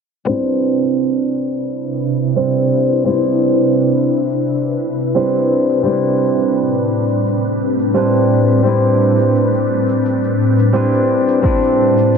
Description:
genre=sunset chillout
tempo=86 BPM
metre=4/4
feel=straight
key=C major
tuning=A4 = 440 Hz
part: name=flamenco guitar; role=accompaniment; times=0.2-12.2 s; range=G3 to B4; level=-15 LUFS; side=moving between left 3 dB and right 5 dB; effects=auto-pan, low-pass filter, tape echo
part: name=ethereal airy pad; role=sustained chords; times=0.8-12.2 s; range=A2 to B4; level=-17 LUFS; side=left 1 dB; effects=ensemble chorus, built-in reverb, phaser
part: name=shaker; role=drums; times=0.3-12.2 s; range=none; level=-55 LUFS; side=left 3 dB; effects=none
part: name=electronic kick drum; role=drums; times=11.4-11.6 s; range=none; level=-17 LUFS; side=equal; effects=none
room=moderate lush hall reverb, RT60 2.8 s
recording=low-pass filter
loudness=-13 LUFS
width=side -6 dB against mid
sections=0.3-12.2 A section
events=filter sweep on nylon-string guitar 0.3-12.2; filter sweep 0.3-12.2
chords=0.3 Cmaj9; 5.9 Am11; 11.4 Cmaj9

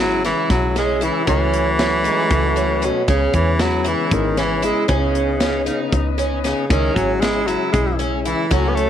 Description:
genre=progressive instrumental, band music in an uneven meter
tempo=232 BPM (eighths)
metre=7/8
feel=straight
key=C# minor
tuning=A4 = 439 Hz
part: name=bright tenor saxophone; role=melody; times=0.0-8.9 s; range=B2 to B3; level=-20 LUFS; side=equal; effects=none
part: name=tonewheel organ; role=accompaniment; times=0.0-8.9 s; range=C#3 to E4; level=-24 LUFS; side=left 12 dB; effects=slow rotary speaker
part: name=picked twelve-string acoustic guitar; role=arpeggios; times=0.0-8.9 s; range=C#4 to E4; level=-23 LUFS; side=right 4 dB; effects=none
part: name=woody FM bass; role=bass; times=0.0-8.9 s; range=G#1 to E2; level=-22 LUFS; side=equal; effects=none
part: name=tight metal drum kit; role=drums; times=0.2-8.9 s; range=hi-hat, kick drum, snare drum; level=-24 LUFS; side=equal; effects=none
part: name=warm trombone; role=second line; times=1.8-2.7 s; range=F#3 to A3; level=-28 LUFS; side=right 11 dB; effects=none
room=light reverb, small room ambience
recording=1960s-style stereo with parts hard left and right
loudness=-16 LUFS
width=side -10 dB against mid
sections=0.0-8.9 A section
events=none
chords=0.0 C#m; 1.3 F#m/C#; 3.1 E6; 4.9 B/C#; 6.7 C#m

